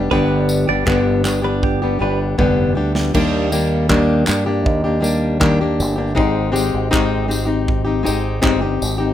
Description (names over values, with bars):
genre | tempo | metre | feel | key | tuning
acoustic pop | 79 BPM | 4/4 | straight | unclear | A4 = 440 Hz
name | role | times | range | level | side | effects
fingerpicked plugged-in steel-string acoustic guitar | accompaniment | 0.0-9.1 s | G2 to G4 | -17 LUFS | left 2 dB | none
fingered electric bass with an envelope filter | bass | 0.0-9.1 s | F1 to G2 | -21 LUFS | right 1 dB | none
direct-recorded clean electric guitar | arpeggios | 0.1-2.2 s | G4 to D5 | -24 LUFS | right 5 dB | phaser
modern studio drum kit | drums | 0.1-9.0 s | crash cymbal, handclaps, kick drum, snare drum, tambourine | -22 LUFS | right 1 dB | none
room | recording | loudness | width
light reverb | none | -15 LUFS | side -11 dB against mid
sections
0.0-3.1 A section; 3.1-9.1 B section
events
drum fill 1.6-3.1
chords
0.0 G; 3.1 Ebmaj7; 6.2 Abmaj7